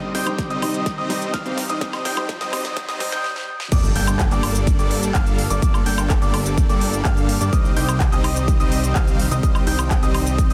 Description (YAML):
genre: EDM, festival progressive house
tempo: 126 BPM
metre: 4/4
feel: straight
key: G minor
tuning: A4 = 437 Hz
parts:
  - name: lush unison pad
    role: sustained chords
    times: 0.0-10.5 s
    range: C3 to A4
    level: -33 LUFS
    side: equal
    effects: chorus, sidechain pumping
  - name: warm grand piano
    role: arpeggios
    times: 0.0-10.5 s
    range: D6 to G6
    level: -31 LUFS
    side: equal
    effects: sidechain pumping, tape echo
  - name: supersaw chords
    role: riff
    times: 0.0-10.5 s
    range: G3 to G5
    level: -28 LUFS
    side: equal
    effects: sidechain pumping, tape echo
  - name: riser and impact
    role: sound effects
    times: 0.1-5.6 s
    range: none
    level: -35 LUFS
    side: equal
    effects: none
  - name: pop drum kit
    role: drums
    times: 0.1-10.5 s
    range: crash cymbal, handclaps, hi-hat, shaker, snare drum, woodblock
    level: -30 LUFS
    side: equal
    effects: high-pass filter on snare, high-pass filter on hats, high-pass filter on perc, high-pass filter on cymbals
  - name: felt-muted upright piano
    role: accompaniment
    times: 0.3-3.1 s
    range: G3 to C5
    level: -34 LUFS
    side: equal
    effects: sidechain pumping, tape echo
  - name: electronic kick drum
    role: drums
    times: 0.4-10.5 s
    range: none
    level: -22 LUFS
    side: equal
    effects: none
  - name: fat analog bass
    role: bass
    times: 3.7-10.5 s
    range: G1 to G2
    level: -26 LUFS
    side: equal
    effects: sidechain pumping
room: light reverb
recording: dense, heavily limited modern master, high-pass filter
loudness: -20 LUFS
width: mono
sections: 0.0-3.7 A section; 3.7-10.5 B section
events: build-up 0.0-3.7; drum fill 0.0-3.2, 3.2-3.7; filter sweep on supersaw synth 0.0-3.7; filter sweep 0.0-3.7; stop 3.2-3.7; drop 3.7-10.5; impact 3.7-5.6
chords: 0.0 Cm; 3.7 Gmadd9; 7.5 Cm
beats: 0.39 0.86 1.34 | 1.81 2.29 2.77 3.24 | 3.72 4.20 4.67 5.15 | 5.62 6.10 6.58 7.05 | 7.53 8.00 8.48 8.96 | 9.43 9.91 10.38